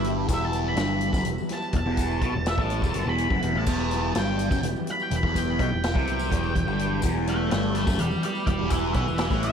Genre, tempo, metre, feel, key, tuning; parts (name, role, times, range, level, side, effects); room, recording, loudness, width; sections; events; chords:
psychedelic rock; 249 BPM (eighths); 7/8; straight; E minor; A4 = 440 Hz
octave-fuzz lead guitar; melody; 0.0-9.5 s; B4 to B5; -30 LUFS; equal; distortion, tape echo
combo organ; sustained chords; 0.0-9.5 s; E3 to B3; -34 LUFS; right 4 dB
thick fuzz guitar; riff; 0.0-9.5 s; E2 to C3; -27 LUFS; left 1 dB; distortion, phaser
overdriven picked electric bass; bass; 0.0-9.5 s; E1 to C2; -29 LUFS; equal
vintage drum kit; drums; 0.0-9.5 s; crash cymbal, hi-hat, kick drum, snare drum; -29 LUFS; equal
tambourine; percussion; 0.3-9.5 s; -46 LUFS; left 9 dB
light reverb, studio reverb; -22 LUFS; side -7 dB against mid
0.0-9.5 A section
lead electric guitar solo 0.0-9.5
0.0 Em